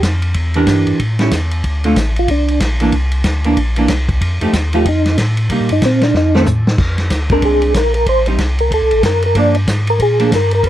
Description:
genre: soul jazz organ trio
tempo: 187 BPM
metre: 4/4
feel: swing 61% on 8ths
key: Bb mixolydian from 6.8 s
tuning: A4 = 440 Hz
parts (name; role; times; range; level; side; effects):
- percussive tonewheel organ; melody; 0.0, 2.2-2.6, 4.7-10.7 s; C4 to D5; -14 LUFS; right 1 dB; slow rotary speaker, chorus vibrato
- tonewheel organ; bass; 0.0-10.7 s; A1 to C3; -16 LUFS; equal; slow rotary speaker
- warm soul drum kit; drums; 0.0-10.7 s; crash cymbal, hi-hat, kick drum, ride cymbal, snare drum, toms; -19 LUFS; equal; none
- archtop guitar, miked and amplified; accompaniment; 0.6-10.3 s; D3 to Bb4; -15 LUFS; right 2 dB; none
room: little or no reverb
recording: dark, warm production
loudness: -12 LUFS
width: side -13 dB against mid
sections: 0.0-6.8 A section; 6.8-10.7 A section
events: tonewheel organ solo 0.0-10.7; drum fill 6.1-6.8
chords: 0.4 Em7b5; 1.0 A7; 1.6 D7(no3); 2.9 C9; 4.2 F9; 5.5 Cm7; 6.1 F7; 6.8 Bb9; 8.1 Am7b5; 8.7 D7; 9.4 Gm7

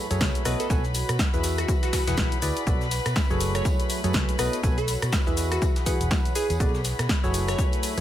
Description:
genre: piano house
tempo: 122 BPM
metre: 4/4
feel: swing 59% on 16ths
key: unclear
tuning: A4 = 440 Hz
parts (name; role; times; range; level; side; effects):
- warm chamber string section; sustained chords; 0.0-8.0 s; B4 to B5; -34 LUFS; left 3 dB; sidechain pumping
- percussive organ stab; riff; 0.0-8.0 s; E3 to G#5; -31 LUFS; equal; chorus, cassette tape, sidechain pumping
- impact; sound effects; 0.0-0.7 s; none; barely audible; none; none
- warbly tape-like pad; texture; 0.0-8.0 s; A3 to F#5; -36 LUFS; right 1 dB; chorus, built-in reverb, sidechain pumping
- vintage muted fingered electric bass; bass; 0.1-8.0 s; E1 to B2; -28 LUFS; equal; sidechain pumping
- punchy analog drum machine; drums; 0.1-8.0 s; cabasa, hi-hat, rim click, snare drum; -30 LUFS; left 1 dB; none
- tambourine; percussion; 0.1-8.0 s; none; -41 LUFS; right 3 dB; none
- breakbeat sampler-style drum kit; drums; 0.2-8.0 s; hi-hat, snare drum; -40 LUFS; left 1 dB; none
- electronic kick drum; drums; 0.2-7.7 s; none; -26 LUFS; equal; none
- glassy wavetable pluck; melody; 0.5-7.6 s; F#4 to C#5; -33 LUFS; right 1 dB; chorus, cassette tape, ping-pong delay
room: little or no reverb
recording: none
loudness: -22 LUFS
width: side -12 dB against mid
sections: 0.0-8.0 A section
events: impact 0.0-0.7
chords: 0.5 B7; 1.4 E; 2.7 Bm7; 3.4 F#madd9; 4.4 B7; 5.4 E; 6.6 Bm7; 7.3 F#madd9

